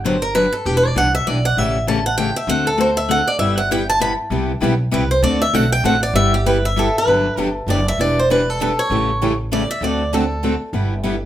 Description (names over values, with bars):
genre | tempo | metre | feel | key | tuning
acoustic string swing (jazz manouche) | 196 BPM | 3/4 | swing 59% on 8ths | G major | A4 = 440 Hz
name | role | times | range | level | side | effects
picked steel-string acoustic guitar | accompaniment | 0.0-11.2 s | C3 to A4 | -22 LUFS | left 5 dB | none
upright bass | bass | 0.0-11.3 s | E1 to D2 | -22 LUFS | equal | none
picked swing-style acoustic guitar | melody | 0.1-10.6 s | G4 to B5 | -18 LUFS | right 1 dB | none
picked steel-string acoustic guitar | accompaniment | 3.4-11.2 s | C3 to B4 | -25 LUFS | right 7 dB | none
room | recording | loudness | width
moderate studio reverb, RT60 0.5 s | none | -15 LUFS | side -12 dB against mid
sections
0.0-7.1 A section; 7.1-11.3 B section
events
steel-string acoustic guitar solo 0.0-7.1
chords
0.0 Gmaj7; 0.7 Em7; 1.6 A7; 2.5 D7; 3.4 G6; 4.3 Cmaj7; 5.2 D7; 6.1 G6; 7.1 Gmaj7; 8.0 Em7; 8.9 A7; 9.8 D7; 10.7 G6